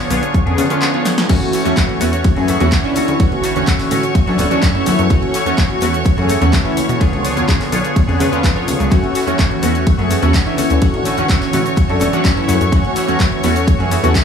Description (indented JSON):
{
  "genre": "filtered disco house",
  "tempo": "126 BPM",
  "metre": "4/4",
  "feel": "straight",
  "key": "F# minor",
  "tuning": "A4 = 440 Hz",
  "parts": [
    { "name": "funky polysynth comp", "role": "accompaniment", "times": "0.0-14.2 s", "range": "D3 to C#5", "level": "-18 LUFS", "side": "equal", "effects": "chorus, phaser, sidechain pumping" },
    { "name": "clear studio violin section", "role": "sustained chords", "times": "0.0-14.2 s", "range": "C#5 to C#6", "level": "-24 LUFS", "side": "equal", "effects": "sidechain pumping" },
    { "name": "direct-recorded clean electric guitar", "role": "riff", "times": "0.0-14.2 s", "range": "E3 to G#4", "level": "-23 LUFS", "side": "left 3 dB", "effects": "sidechain pumping" },
    { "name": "plucky analog bass", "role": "bass", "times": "0.1-14.1 s", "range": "D1 to C#3", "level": "-19 LUFS", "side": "equal", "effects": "sidechain pumping" },
    { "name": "punchy analog drum machine", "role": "drums", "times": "0.1-14.2 s", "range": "crash cymbal, handclaps, hi-hat, ride cymbal, shaker, snare drum", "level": "-23 LUFS", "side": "equal", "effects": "sidechain pumping on hats, sidechain pumping on perc, sidechain pumping on cymbals" },
    { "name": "electronic kick drum", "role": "drums", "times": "0.3-14.2 s", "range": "none", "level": "-15 LUFS", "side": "equal", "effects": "none" },
    { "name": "tambourine and congas", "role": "percussion", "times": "1.3-14.2 s", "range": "none", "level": "-29 LUFS", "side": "left 3 dB", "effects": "none" }
  ],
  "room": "light reverb",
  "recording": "small room ambience",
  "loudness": "-12 LUFS",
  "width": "side -7 dB against mid",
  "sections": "0.0-14.2 A section",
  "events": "drum fill 1.1",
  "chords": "0.0 C#7b9; 1.3 F#m7; 3.0 Dmaj9; 4.9 F#m7; 7.0 C#7b9; 8.9 F#m7; 10.6 Dmaj9; 12.5 F#m7"
}